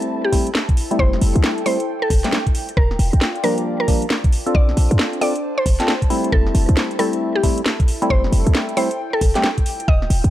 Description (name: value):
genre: UK garage, two-step garage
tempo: 135 BPM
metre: 4/4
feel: swing 63% on 16ths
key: F major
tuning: A4 = 440 Hz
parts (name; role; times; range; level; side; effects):
- mallet-like synth pluck; melody; 0.0-10.1 s; G4 to Eb5; -24 LUFS; equal; chorus, analog delay
- percussive organ stab; stabs; 0.0-9.5 s; F3 to A4; -22 LUFS; left 1 dB; chorus
- garage drum kit; drums; 0.0-10.3 s; hi-hat, snare drum; -23 LUFS; equal; small room ambience
- warbly tape-like pad; texture; 0.0-10.3 s; D4 to A5; -29 LUFS; equal; chorus, built-in reverb, sidechain pumping
- electronic kick drum; drums; 0.3-10.0 s; none; -17 LUFS; equal; small room ambience
- short 808-style bass; bass; 1.0-10.3 s; Eb1 to F2; -17 LUFS; equal; sidechain pumping
room: digital ambience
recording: dry, gritty hardware recording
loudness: -16 LUFS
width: side -14 dB against mid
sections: 0.0-10.3 A section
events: filter sweep on synth stab 0.0-10.3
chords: 0.0 Fmaj9; 2.5 Ebmaj9; 4.3 Bbmaj9; 6.3 Fmaj9; 9.7 Ebmaj9